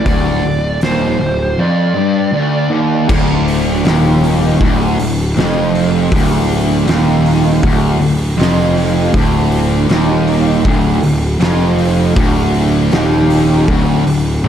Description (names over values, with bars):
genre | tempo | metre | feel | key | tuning
stoner and doom metal | 79 BPM | 4/4 | straight | D minor | A4 = 440 Hz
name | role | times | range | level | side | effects
fuzz lead guitar | melody | 0.0-2.7 s | C5 to D5 | -20 LUFS | right 2 dB | distortion, tape echo
fuzz guitar | riff | 0.0-14.5 s | D2 to G2 | -13 LUFS | equal | distortion
fuzz picked electric bass | bass | 0.1-14.5 s | D1 to F1 | -17 LUFS | equal | overdrive
oversized low-tuned drum kit | drums | 0.1-14.5 s | crash cymbal, hi-hat, kick drum, snare drum, toms | -18 LUFS | equal | none
room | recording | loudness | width
light reverb, small room ambience | dark, warm production | -11 LUFS | side -9 dB against mid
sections
0.0-3.1 A section; 3.1-14.5 B section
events
none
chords
0.0 N.C.; 3.1 Dm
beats
| 0.06 0.82 1.58 2.33 | 3.09 3.85 4.61 5.36 | 6.12 6.87 7.63 8.38 | 9.14 9.90 10.65 11.41 | 12.16 12.92 13.68 14.43